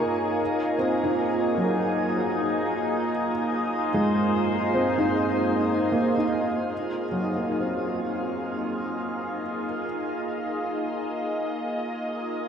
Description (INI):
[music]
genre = ambient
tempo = 76 BPM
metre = 4/4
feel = straight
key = Ab mixolydian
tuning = A4 = 441 Hz
[part]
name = evolving wavetable pad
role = sustained chords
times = 0.0-12.5 s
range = Bb3 to Eb5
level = -25 LUFS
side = equal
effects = phaser, built-in reverb
[part]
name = felt-muted upright piano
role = arpeggios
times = 0.0-12.5 s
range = Gb3 to Bb4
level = -28 LUFS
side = right 1 dB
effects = diffuse ambient delay
[sound]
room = wet shimmer reverb, RT60 7.1 s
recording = dark, warm production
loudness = -23 LUFS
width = side -7 dB against mid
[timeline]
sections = 0.0-6.7 A section; 6.7-12.5 B section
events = none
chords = 0.4 Ab